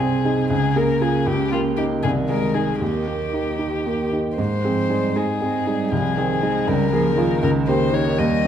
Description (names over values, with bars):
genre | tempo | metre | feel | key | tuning
quick classical-period movement for piano trio | 78 BPM (dotted quarters) | 6/8 | straight | Ab major | A4 = 439 Hz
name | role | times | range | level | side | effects
rich violin | melody | 0.0-8.5 s | F4 to Eb5 | -25 LUFS | left 6 dB | none
dark cello | second line | 0.0-8.5 s | C3 to Ab3 | -26 LUFS | right 5 dB | none
warm baby grand piano | accompaniment | 0.0-8.5 s | C2 to Ab4 | -20 LUFS | right 1 dB | none
room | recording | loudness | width
wet recital hall reverb, RT60 1.7 s | dark, warm production | -18 LUFS | side -9 dB against mid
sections
0.0-8.5 A section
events
none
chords
0.0 Ab/C; 0.5 Bbm7/Db; 1.3 Eb7/Db; 2.0 Ab/C; 2.8 Eb; 4.4 Ab; 5.9 Ab/C; 6.7 Bbm7/Db; 7.4 Eb7/Db